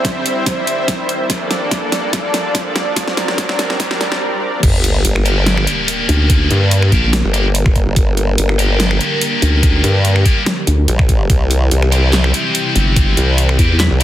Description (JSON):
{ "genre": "heavy wobble dubstep", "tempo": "144 BPM", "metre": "4/4", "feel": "swing 53% on 16ths, half-time", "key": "G dorian", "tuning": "A4 = 439 Hz", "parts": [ { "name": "lush unison pad", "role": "sustained chords", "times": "0.0-14.0 s", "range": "C3 to E5", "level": "-21 LUFS", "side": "equal", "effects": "chorus, sidechain pumping" }, { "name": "dubstep drum kit", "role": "drums", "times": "0.0-14.0 s", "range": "crash cymbal, finger snaps, handclaps, hi-hat, snare drum", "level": "-19 LUFS", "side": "equal", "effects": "studio ambience" }, { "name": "electronic kick drum", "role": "drums", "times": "0.0-13.7 s", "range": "none", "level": "-14 LUFS", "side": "equal", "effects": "studio ambience" }, { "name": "riser, swell and sub drop", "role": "sound effects", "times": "0.0-6.3 s", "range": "none", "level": "-25 LUFS", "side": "equal", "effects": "none" }, { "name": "formant-sweep wobble bass", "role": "bass", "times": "4.6-14.0 s", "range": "G1 to G2", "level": "-14 LUFS", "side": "equal", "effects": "chorus, overdrive" }, { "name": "scooped high-gain guitar", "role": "stabs", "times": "5.3-14.0 s", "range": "Bb3 to G4", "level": "-18 LUFS", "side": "left 2 dB", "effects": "distortion, digital delay" }, { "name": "vowel-sweep wobble bass", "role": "bass", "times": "6.1-13.9 s", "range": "G1 to E2", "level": "-14 LUFS", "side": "equal", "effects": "chorus, overdrive" } ], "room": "light reverb, digital ambience", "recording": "dense, heavily limited modern master, high-pass filter", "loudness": "-12 LUFS", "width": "side -12 dB against mid", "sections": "0.0-4.6 A section; 4.6-14.0 B section", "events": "build-up 0.0-4.6; drum fill 0.0-4.2; riser 0.0-4.2; swell 3.8-4.6; drop 4.6-14.0; impact 4.6-6.3", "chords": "0.0 C; 1.3 Gmadd9; 3.0 Bbadd9; 4.6 Gm; 11.3 C", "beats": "0.05 0.46 0.88 | 1.30 1.71 2.13 2.55 | 2.96 3.38 3.80 4.21 | 4.63 5.05 5.46 5.88 | 6.30 6.71 7.13 7.55 | 7.96 8.38 8.80 9.21 | 9.63 10.05 10.46 10.88 | 11.30 11.71 12.13 12.55 | 12.96 13.38 13.80" }